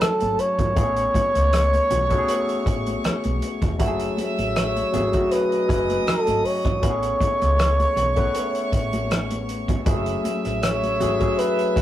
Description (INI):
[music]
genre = lush 1970s-style soul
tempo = 79 BPM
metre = 4/4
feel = swing 54% on 16ths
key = F# dorian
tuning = A4 = 441 Hz
[part]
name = breathy flugelhorn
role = melody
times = 0.0-11.8 s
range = A4 to C#5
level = -23 LUFS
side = equal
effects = none
[part]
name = warm studio violin section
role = second line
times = 0.0-11.8 s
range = A4 to E6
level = -32 LUFS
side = right 2 dB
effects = none
[part]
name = barky tine electric piano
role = accompaniment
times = 0.0-11.8 s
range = F#3 to G#5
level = -26 LUFS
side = left 2 dB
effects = overdrive, phaser
[part]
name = vintage muted fingered electric bass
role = bass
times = 0.0-11.8 s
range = E1 to C#2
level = -26 LUFS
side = equal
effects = none
[part]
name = warm soul drum kit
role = drums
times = 0.0-11.8 s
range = hi-hat, kick drum, rim click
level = -25 LUFS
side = equal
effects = none
[part]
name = congas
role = percussion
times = 0.2-11.8 s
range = none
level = -33 LUFS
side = right 2 dB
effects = none
[sound]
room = moderate small room reverb, RT60 0.5 s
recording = rough rehearsal-room recording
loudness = -19 LUFS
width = side -12 dB against mid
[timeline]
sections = 0.0-11.8 A section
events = none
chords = 0.0 F#m7; 0.8 Amaj7; 3.8 F#m7; 6.8 Amaj7; 9.9 F#m7